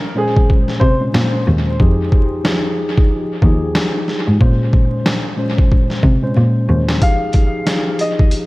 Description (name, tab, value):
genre	hip hop, boom-bap hip-hop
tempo	92 BPM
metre	4/4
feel	swing 60% on 16ths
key	F minor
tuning	A4 = 440 Hz
part	warm upright piano	melody	0.0-1.0, 7.0-8.3 s	Ab4 to F5	-22 LUFS	equal	high-pass filter, low-pass filter, dub echo
part	dark cello	bass	0.0-6.9 s	Eb2 to C3	-16 LUFS	equal	none
part	mellow tine electric piano	accompaniment	0.1-8.5 s	Bb2 to C5	-20 LUFS	left 1 dB	fast stereo tremolo, cassette tape, high-pass filter, low-pass filter, dub echo
part	trip hop sampler-style drum kit	drums	0.4-8.5 s	hi-hat, kick drum, snare drum	-15 LUFS	equal	none
room	light reverb, small room ambience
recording	echo-heavy mix, vinyl crackle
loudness	-13 LUFS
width	side -20 dB against mid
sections	0.0-8.5 A section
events	break 0.0-7.0; drum fill 6.4-7.0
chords	0.0 Bbm9; 1.8 Fm9; 4.4 Bbm9; 7.0 Fm9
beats	0.49 1.14 | 1.79 2.45 3.10 3.75 | 4.40 5.06 5.71 6.36 | 7.01 7.67 8.32